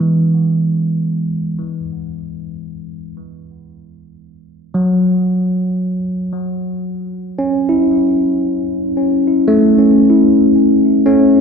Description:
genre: ambient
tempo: 57 BPM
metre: 4/4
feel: straight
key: unclear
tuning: A4 = 436 Hz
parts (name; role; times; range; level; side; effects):
- barky tine electric piano; arpeggios; 0.0-11.4 s; E3 to E4; -13 LUFS; equal; phaser, ping-pong delay
room: wet lush hall reverb, RT60 2.8 s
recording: none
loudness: -12 LUFS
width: side -6 dB against mid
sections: 0.0-10.0 A section; 10.0-11.4 B section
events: none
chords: 0.0 E; 1.6 A/F# (rootless); 10.0 A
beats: 0.54 | 1.59 2.65 3.70 4.75 | 5.80 6.86 7.91 8.96 | 10.02 11.07

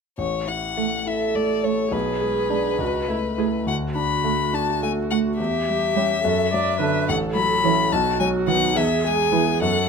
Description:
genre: quick classical-period movement for piano quartet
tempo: 70 BPM (dotted quarters)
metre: 6/8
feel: rubato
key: A major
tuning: A4 = 440 Hz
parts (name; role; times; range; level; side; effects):
- rich violin; melody; 0.2-9.9 s; B4 to B5; -23 LUFS; left 8 dB; none
- clear grand piano; accompaniment; 0.2-9.9 s; A1 to D5; -25 LUFS; left 2 dB; none
- rich cello; second line; 0.8-9.5 s; D3 to A3; -27 LUFS; right 10 dB; none
- rich viola; accompaniment; 1.1-9.9 s; E4 to D5; -26 LUFS; right 9 dB; none
room: light reverb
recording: close, detailed microphones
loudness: -19 LUFS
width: side -5 dB against mid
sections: 0.2-9.9 A section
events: none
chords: 0.2 A; 1.9 G#dim/B; 2.8 A/C#; 3.7 D; 5.4 C#dim/E; 6.2 D/F#; 7.1 F#m7/A; 7.9 B; 8.8 E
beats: | 0.19 1.07 | 1.94 2.81 | 3.67 4.53 | 5.39 6.23 | 7.08 7.92 | 8.76 9.61

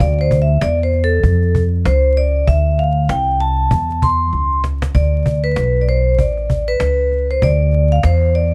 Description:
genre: hip hop, jazz-hop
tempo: 97 BPM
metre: 4/4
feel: swing 58% on 16ths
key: D dorian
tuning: A4 = 441 Hz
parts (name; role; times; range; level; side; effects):
- vibraphone with medium hard mallets; accompaniment; 0.0-8.5 s; A4 to C6; -20 LUFS; equal; none
- upright bass; bass; 0.0-8.5 s; A1 to F2; -18 LUFS; equal; none
- cajon; drums; 0.0-8.4 s; none; -23 LUFS; equal; none
room: small room ambience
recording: vinyl crackle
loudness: -16 LUFS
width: mono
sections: 0.0-4.9 A section; 4.9-8.5 B section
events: vibraphone solo 0.0-4.9, 4.9-8.5; drum fill 4.3-4.9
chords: 0.0 Dm9; 4.9 Dsus2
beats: | 0.00 0.62 1.24 1.85 | 2.47 3.09 3.71 4.33 | 4.95 5.57 6.18 6.80 | 7.42 8.04

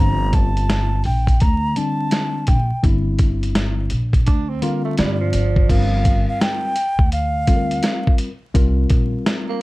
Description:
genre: hip hop, jazz-hop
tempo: 84 BPM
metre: 4/4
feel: swing 64% on 16ths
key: G dorian, G minor from 5.7 s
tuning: A4 = 441 Hz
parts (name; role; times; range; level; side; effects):
- breathy alto ocarina; melody; 0.0-8.2 s; D5 to Bb5; -24 LUFS; equal; none
- growling tenor saxophone; second line; 0.0-9.6 s; F3 to D4; -27 LUFS; right 7 dB; none
- mellow tine electric piano; accompaniment; 0.0-9.6 s; D3 to Bb4; -24 LUFS; left 3 dB; medium stereo tremolo
- upright bass; bass; 0.0-9.1 s; G1 to G2; -20 LUFS; equal; none
- dusty soul sampler-style drum kit; drums; 0.3-9.5 s; crash cymbal, hi-hat, kick drum, snare drum; -18 LUFS; equal; vintage 12-bit sampler grit
room: little or no reverb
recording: dark, warm production, vinyl crackle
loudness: -16 LUFS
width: side -20 dB against mid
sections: 0.0-5.7 A section; 5.7-9.6 B section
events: none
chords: 0.0 Gm9; 5.7 Gm7; 8.5 C7(no3)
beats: 0.69 1.40 2.12 | 2.83 3.55 4.26 4.97 | 5.69 6.40 7.12 7.83 | 8.55 9.26

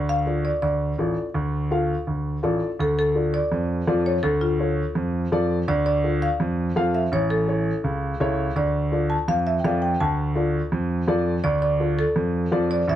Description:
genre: latin, cumbia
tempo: 166 BPM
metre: 4/4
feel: straight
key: D harmonic minor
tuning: A4 = 440 Hz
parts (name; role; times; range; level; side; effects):
- marimba with medium mallets; melody; 0.0-13.0 s; F4 to A5; -25 LUFS; equal; plate reverb
- dark baby grand piano; bass; 0.0-13.0 s; A1 to F2; -23 LUFS; right 1 dB; none
- dark upright piano; accompaniment; 0.3-12.8 s; E4 to F5; -25 LUFS; left 2 dB; none
room: light reverb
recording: heard from further back in the room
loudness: -20 LUFS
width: side -11 dB against mid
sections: 0.0-2.8 A section; 2.8-13.0 B section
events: none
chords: 0.0 Dm; 7.1 A; 8.6 Dm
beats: 0.26 0.62 0.99 | 1.35 1.71 2.07 2.43 | 2.79 3.15 3.51 3.87 | 4.24 4.59 4.96 5.32 | 5.68 6.04 6.40 6.76 | 7.12 7.48 7.84 8.20 | 8.56 8.92 9.28 9.64 | 10.00 10.36 10.72 11.08 | 11.44 11.80 12.16 12.52 | 12.88

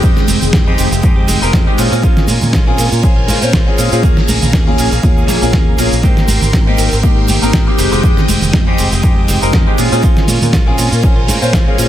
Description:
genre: filtered disco house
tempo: 120 BPM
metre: 4/4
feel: swing 55% on 16ths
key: unclear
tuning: A4 = 439 Hz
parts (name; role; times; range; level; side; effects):
- bright grand piano; accompaniment; 0.0-11.9 s; Ab3 to C5; -18 LUFS; left 1 dB; phaser, sidechain pumping
- phased string machine; sustained chords; 0.0-11.9 s; Ab3 to Eb6; -22 LUFS; equal; ensemble chorus, phaser, sidechain pumping
- direct-recorded clean electric guitar; riff; 0.0-11.9 s; Eb3 to Ab4; -22 LUFS; right 4 dB; sidechain pumping
- modern bright fingered electric bass; bass; 0.0-11.9 s; F1 to Bb2; -17 LUFS; equal; sidechain pumping
- dusty soul sampler-style drum kit; drums; 0.0-11.9 s; cabasa, hi-hat, snare drum; -18 LUFS; right 1 dB; sidechain pumping on hats, sidechain pumping on cymbals, sidechain pumping on perc
- electronic kick drum; drums; 0.0-11.6 s; none; -13 LUFS; equal; none
- egg shaker and congas; percussion; 0.0-11.9 s; none; -22 LUFS; right 2 dB; sidechain pumping on perc
room: little or no reverb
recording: none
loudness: -9 LUFS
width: side -12 dB against mid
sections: 0.0-11.9 A section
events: none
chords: 0.0 Fm9; 1.8 Bbm7; 4.0 Eb9sus4; 6.0 Abmaj9; 7.8 Fm9; 9.8 Bbm7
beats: | 0.03 0.53 1.03 1.53 | 2.03 2.53 3.03 3.53 | 4.03 4.53 5.03 5.53 | 6.03 6.53 7.03 7.53 | 8.03 8.53 9.03 9.53 | 10.03 10.53 11.03 11.53

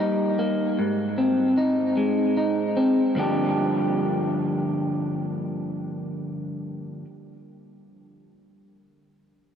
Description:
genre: rock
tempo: 50 BPM (dotted quarters)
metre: 6/8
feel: straight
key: G phrygian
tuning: A4 = 440 Hz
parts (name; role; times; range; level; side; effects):
- electric guitar through a small old amp; arpeggios; 0.0-7.1 s; G2 to G4; -22 LUFS; equal; diffuse ambient delay
room: wet huge ambient reverb, RT60 5.3 s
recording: dreamy mix soaked in reverb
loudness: -22 LUFS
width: side -8 dB against mid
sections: 0.0-3.2 A section; 3.2-5.5 B section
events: none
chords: 0.0 Eb/G; 0.8 Ab; 3.2 Gm7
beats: | 0.79 1.98 | 3.17 4.36

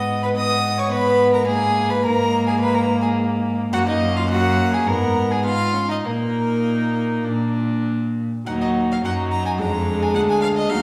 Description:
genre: quick classical-period movement for string quartet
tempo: 98-109 BPM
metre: 4/4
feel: rubato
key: Eb minor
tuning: A4 = 440 Hz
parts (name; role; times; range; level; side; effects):
- warm violin; melody; 0.0-10.8 s; Bb4 to Eb6; -27 LUFS; equal; none
- dark violin; second line; 0.0-10.8 s; Bb3 to Eb5; -26 LUFS; equal; none
- warm viola; accompaniment; 0.0-10.8 s; Gb3 to Eb4; -25 LUFS; equal; none
- rich cello; bass; 0.0-10.8 s; D2 to Bb2; -25 LUFS; equal; none
room: wet recital hall reverb, RT60 1.3 s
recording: heard from further back in the room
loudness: -20 LUFS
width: mono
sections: 0.0-8.5 A section; 8.5-10.8 B section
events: none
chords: 0.0 Abm; 1.5 Abmadd9; 3.7 Gb69; 4.9 Abm69; 6.0 Eb5/Bb; 7.3 Bb; 8.5 Ebm; 9.6 Ddim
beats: 0.37 0.92 | 1.48 2.04 2.60 3.16 | 3.73 4.29 4.87 5.45 | 6.05 6.65 7.26 7.86 | 8.46 9.04 9.59 10.15 | 10.71

